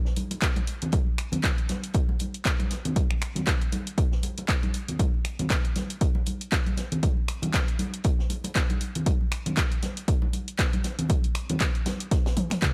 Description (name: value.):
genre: house.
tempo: 118 BPM.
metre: 4/4.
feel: swing 57% on 16ths.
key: none.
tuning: none.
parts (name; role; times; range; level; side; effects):
open jazz drum kit; drums; 0.1-12.7 s; hi-hat, snare drum; -43 LUFS; equal; high-pass filter on hats, high-pass filter on snare, high-pass filter on room.
punchy analog drum machine; drums; 0.2-12.7 s; finger snaps, handclaps, hi-hat, toms; -33 LUFS; equal; none.
congas; percussion; 0.2-12.6 s; none; -35 LUFS; equal; none.
electronic kick drum; drums; 0.4-12.7 s; none; -28 LUFS; equal; none.
room: small room ambience.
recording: none.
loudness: -27 LUFS.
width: mono.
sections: 0.0-12.7 A section.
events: drum fill 12.4-12.7.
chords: none.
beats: 0.42 | 0.93 1.44 1.94 2.45 | 2.96 3.47 3.98 4.49 | 5.00 5.50 6.01 6.52 | 7.03 7.54 8.05 8.55 | 9.06 9.57 10.08 10.59 | 11.10 11.61 12.11 12.62.